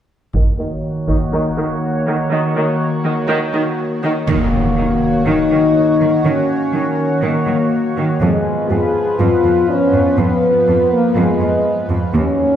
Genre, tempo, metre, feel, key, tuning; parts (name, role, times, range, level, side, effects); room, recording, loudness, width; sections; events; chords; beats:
cinematic, hybrid orchestral and electronic film score; 122 BPM; 4/4; straight; Eb minor; A4 = 441 Hz
clear symphonic viola section; accompaniment; 0.3-4.1 s; Eb3; -20 LUFS; right 1 dB; low-pass filter
chorused pulse-width pad; sustained chords; 0.3-12.6 s; Eb3 to Db5; -19 LUFS; equal; low-pass filter
taiko ensemble; drums; 0.3-1.3 s; -19 LUFS; right 1 dB
mellow French horn section; sustained chords; 4.3-12.6 s; Ab3 to Ab4; -16 LUFS; left 2 dB; low-pass filter
clear symphonic cello section; bass; 4.3-12.2 s; Eb2 to Eb3; -19 LUFS; right 2 dB
impact; sound effects; 4.3-6.2 s; -22 LUFS; equal
wet scoring stage reverb, RT60 1.8 s; heard from further back in the room; -14 LUFS; side -10 dB against mid
0.3-4.3 A section; 4.3-12.6 B section
filter sweep 0.3-4.3; impact 4.3-6.2
0.3 Ebm7; 8.2 Fdim
| 0.34 0.83 1.32 1.81 | 2.31 2.80 3.29 3.78 | 4.27 4.77 5.26 5.75 | 6.24 6.73 7.22 7.72 | 8.21 8.70 9.19 9.68 | 10.18 10.67 11.16 11.65 | 12.14